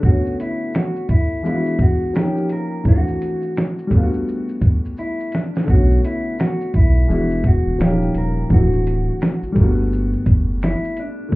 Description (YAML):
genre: lo-fi hip hop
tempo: 85 BPM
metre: 4/4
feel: swing 62% on 16ths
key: unclear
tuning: A4 = 440 Hz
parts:
  - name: mellow electric guitar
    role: melody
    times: 0.0-11.3 s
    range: D4 to A#4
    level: -25 LUFS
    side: equal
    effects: tape echo
  - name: warm upright piano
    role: accompaniment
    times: 0.0-11.4 s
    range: D3 to G4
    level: -22 LUFS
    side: left 1 dB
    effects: none
  - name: dusty soul sampler-style drum kit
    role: drums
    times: 0.0-11.4 s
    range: finger snaps, hi-hat, kick drum, shaker, snare drum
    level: -16 LUFS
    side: equal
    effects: none
  - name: tambourine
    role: percussion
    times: 0.7-10.8 s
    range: none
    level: -64 LUFS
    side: right 4 dB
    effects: none
  - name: soft dub sub bass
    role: bass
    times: 5.7-11.4 s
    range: D1 to B1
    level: -18 LUFS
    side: equal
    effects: none
room: moderate small room reverb, RT60 0.5 s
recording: heard muffled through a wall, club reverb, EQ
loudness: -16 LUFS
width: side -20 dB against mid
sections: 0.0-11.4 A section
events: break 0.0-5.7; drum fill 5.0-5.7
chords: 0.0 Bm7; 1.4 E7; 2.1 D#9; 2.9 D7; 3.9 Gmaj7; 5.7 Bm7; 7.1 E7; 7.8 D#9; 8.5 D7; 9.6 Gmaj7